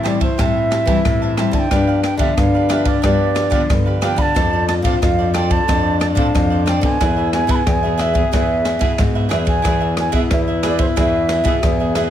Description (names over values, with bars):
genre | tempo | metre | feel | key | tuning
samba and choro | 91 BPM | 4/4 | straight | unclear | A4 = 441 Hz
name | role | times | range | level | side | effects
mellow wooden flute | melody | 0.0-12.0 s | C5 to B5 | -21 LUFS | right 2 dB | none
breathy trombone | second line | 0.0-12.1 s | D4 to G#4 | -22 LUFS | left 5 dB | none
cavaquinho | accompaniment | 0.0-12.1 s | D4 to A5 | -26 LUFS | right 5 dB | none
nylon-string guitar | accompaniment | 0.0-12.1 s | G2 to A4 | -24 LUFS | left 2 dB | none
nylon-string guitar | bass | 0.0-12.1 s | E2 to E3 | -20 LUFS | equal | none
open jazz drum kit | drums | 0.1-12.1 s | kick drum, ride cymbal, rim click | -20 LUFS | equal | none
room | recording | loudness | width
light reverb | none | -14 LUFS | side -10 dB against mid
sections
0.0-12.1 A section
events
none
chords
0.0 Am7; 1.7 G7; 4.4 Dm7/F; 7.0 E